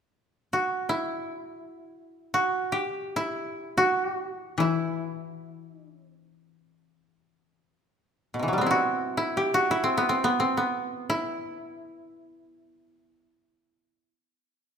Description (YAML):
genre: japanese traditional, Japanese chamber music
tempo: free time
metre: none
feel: none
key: E hirajoshi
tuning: A4 = 440 Hz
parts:
  - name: koto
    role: melody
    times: 0.5-14.1 s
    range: B2 to G4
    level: -25 LUFS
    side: equal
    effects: none
  - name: koto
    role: accompaniment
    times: 4.6-7.7 s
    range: E3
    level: -28 LUFS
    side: left 7 dB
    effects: none
room: moderate recital hall reverb, RT60 1.7 s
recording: minimal, uncompressed stereo recording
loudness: -25 LUFS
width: side -7 dB against mid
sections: 0.0-14.8 A section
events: none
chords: none